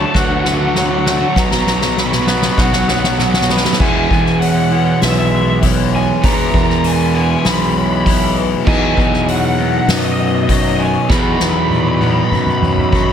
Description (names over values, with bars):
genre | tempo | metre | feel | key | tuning
post-rock | 99 BPM | 4/4 | straight | E major | A4 = 439 Hz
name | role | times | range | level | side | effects
lead guitar through a small cranked amp | melody | 0.0-13.1 s | D#5 to B5 | -20 LUFS | equal | overdrive, slapback echo
twangy electric guitar | arpeggios | 0.0-3.8 s | B2 to F#4 | -25 LUFS | left 4 dB | slapback echo
vibraphone with medium mallets | arpeggios | 0.0-13.1 s | A#4 to E5 | -26 LUFS | right 3 dB | slapback echo
crunchy overdriven guitar | riff | 0.0-13.1 s | B2 to E4 | -20 LUFS | left 11 dB | phaser
crunchy overdriven guitar | riff | 0.0-13.1 s | E2 to B3 | -19 LUFS | right 10 dB | none
fuzz fingered electric bass | bass | 0.0-13.1 s | B1 to F#2 | -18 LUFS | equal | overdrive
soft-mallet drum kit | drums | 0.1-13.1 s | crash cymbal, hi-hat, kick drum, snare drum, toms | -18 LUFS | equal | none
room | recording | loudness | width
light reverb, studio reverb | none | -12 LUFS | side -8 dB against mid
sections
0.0-3.8 A section; 3.8-13.1 B section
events
build-up 0.0-3.8; drum fill 0.0-3.8, 11.1-13.1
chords
0.0 D; 1.4 B5; 3.8 E; 8.7 B/E